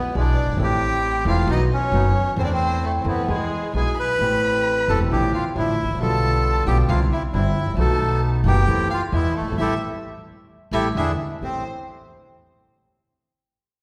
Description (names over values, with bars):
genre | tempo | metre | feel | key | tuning
tango | 134 BPM | 4/4 | rubato | A minor | A4 = 440 Hz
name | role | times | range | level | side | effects
bandoneon | melody | 0.0-11.6 s | G#3 to B4 | -26 LUFS | equal | none
warm violin | second line | 0.0-11.6 s | G#4 to B5 | -34 LUFS | equal | none
dark concert grand piano | accompaniment | 0.1-11.6 s | E1 to A4 | -28 LUFS | equal | none
upright bass | bass | 0.1-11.6 s | E1 to E2 | -25 LUFS | equal | none
bandoneon | stabs | 0.2-11.6 s | F3 to G4 | -35 LUFS | equal | none
room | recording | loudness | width
wet scoring stage reverb, RT60 1.8 s | recorded in a church or concert hall | -21 LUFS | mono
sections
0.0-11.4 A section; 11.4-13.2 B section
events
band accent 9.6-11.4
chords
0.0 E/B; 0.6 Am; 1.5 B; 2.4 Am/E; 3.3 E; 4.2 Am7; 5.1 Dmadd9/A; 6.0 G7/B; 6.9 Cadd9; 7.8 B7; 8.7 Am/E; 9.1 E; 9.6 Am7; 11.0 E7; 11.4 Am7